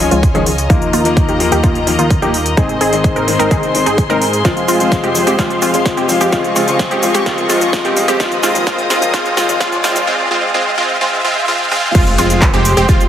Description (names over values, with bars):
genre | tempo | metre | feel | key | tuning
EDM, festival progressive house | 128 BPM | 4/4 | straight | F minor | A4 = 441 Hz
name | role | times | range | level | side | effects
bright grand piano | accompaniment | 0.0-10.1 s | Eb3 to F4 | -18 LUFS | left 4 dB | sidechain pumping, digital delay
rich chamber string section | sustained chords | 0.0-13.1 s | F4 to Eb6 | -20 LUFS | equal | sidechain pumping
fat analog bass | bass | 0.0-13.1 s | F1 to Ab2 | -22 LUFS | equal | sidechain pumping
big-room dance drum kit | drums | 0.0-13.1 s | cabasa, crash cymbal, handclaps, hi-hat, snare drum | -20 LUFS | equal | overdrive, high-pass filter on hats, high-pass filter on snare, high-pass filter on perc, high-pass filter on cymbals
riser and impact | sound effects | 5.6-13.1 s | none | -26 LUFS | right 2 dB | none
wide unison pluck | arpeggios | 0.1-13.0 s | F4 to Bb4 | -20 LUFS | right 1 dB | sidechain pumping, digital delay
supersaw stab | riff | 0.1-13.0 s | Eb3 to Bb4 | -17 LUFS | right 1 dB | sidechain pumping, low-pass filter, digital delay
electronic kick drum | drums | 0.2-13.0 s | none | -15 LUFS | equal | overdrive
room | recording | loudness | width
moderate lush hall reverb, RT60 2.2 s | heavily compressed radio sound, multiband compression, high-pass filter | -11 LUFS | side -10 dB against mid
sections
0.0-11.9 A section; 11.9-13.1 B section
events
build-up 0.0-11.9; filter sweep on supersaw synth 0.0-11.9; filter sweep on synth pluck 0.0-11.9; filter sweep 0.0-11.9; drum fill 4.5-10.1; drop 11.9-13.1; impact 11.9-13.1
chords
0.0 Dbadd9; 0.7 Ebsus2; 2.6 Ab; 4.5 Fm; 6.3 Dbadd9; 8.2 Ebsus2; 10.1 Ab; 11.9 Fm